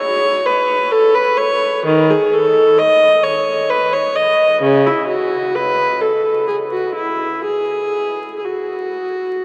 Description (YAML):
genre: classical, baroque-style suite movement for unaccompanied viola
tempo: 60-67 BPM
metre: 3/4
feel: rubato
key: unclear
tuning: A4 = 440 Hz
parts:
  - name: warm viola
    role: solo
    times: 0.0-9.4 s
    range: C#3 to D#5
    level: -16 LUFS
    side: equal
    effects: none
room: wet huge ambient reverb, RT60 7.7 s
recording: in a vast, echoing space, vinyl crackle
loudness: -16 LUFS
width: mono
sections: 0.0-9.4 A section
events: none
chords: none